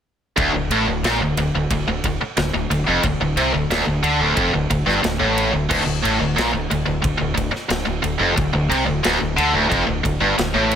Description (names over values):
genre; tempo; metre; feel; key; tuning
heavy metal; 90 BPM; 4/4; straight; D minor; A4 = 440 Hz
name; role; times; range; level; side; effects
tight distorted guitar; riff; 0.4-10.8 s; D2 to D3; -18 LUFS; equal; distortion
growling fingered electric bass; bass; 0.4-10.8 s; D1 to D2; -25 LUFS; equal; overdrive
big rock drum kit; drums; 0.4-10.8 s; crash cymbal, kick drum, ride cymbal, snare drum; -26 LUFS; equal; none
room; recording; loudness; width
light reverb, small room ambience; none; -17 LUFS; side -8 dB against mid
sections
0.4-10.8 A section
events
none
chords
0.4 Dm